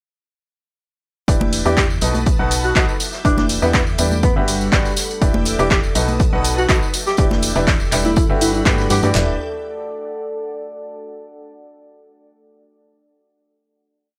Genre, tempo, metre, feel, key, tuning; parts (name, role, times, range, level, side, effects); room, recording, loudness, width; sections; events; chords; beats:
piano house; 122 BPM; 4/4; straight; E minor; A4 = 442 Hz
string machine, violins; sustained chords; 1.3-9.4 s; G3 to G6; -33 LUFS; equal; ensemble chorus, sidechain pumping
clear grand piano; riff; 1.3-9.3 s; B2 to F#5; -24 LUFS; equal; vintage 12-bit sampler grit, sidechain pumping, low-pass filter, tape echo
organ-like FM bass; bass; 1.3-9.4 s; E1 to G2; -25 LUFS; equal; sidechain pumping
punchy analog drum machine; drums; 1.3-9.3 s; handclaps, kick drum, snare drum, toms; -21 LUFS; equal
warm soul drum kit; drums; 1.3-9.1 s; hi-hat, snare drum; -33 LUFS; equal; high-pass filter on hats, high-pass filter on snare, high-pass filter on room
tambourine and congas; percussion; 1.3-9.1 s; -28 LUFS; equal
deep dark ambient pad; texture; 2.0-11.1 s; A4 to F#5; -33 LUFS; equal; chorus, built-in reverb, sidechain pumping
punchy analog drum machine; drums; 1.5-9.0 s; handclaps, hi-hat; -25 LUFS; equal
breathy alto saxophone; melody; 1.7-9.1 s; B3 to G4; -25 LUFS; equal; tape echo
studio ambience; dry, gritty hardware recording; -17 LUFS; mono
1.3-9.2 groove; 9.2-11.1 final chord
1.3 Em7; 2.0 B7; 3.0 Em7; 4.2 Gmaj7; 5.2 Em7; 6.0 B7; 6.9 Em7
| 1.28 1.77 2.27 2.76 | 3.25 3.74 4.23 4.72 | 5.22 5.71 6.20 6.69 | 7.18 7.67 8.17 8.66 | 9.15 9.64 10.13 10.62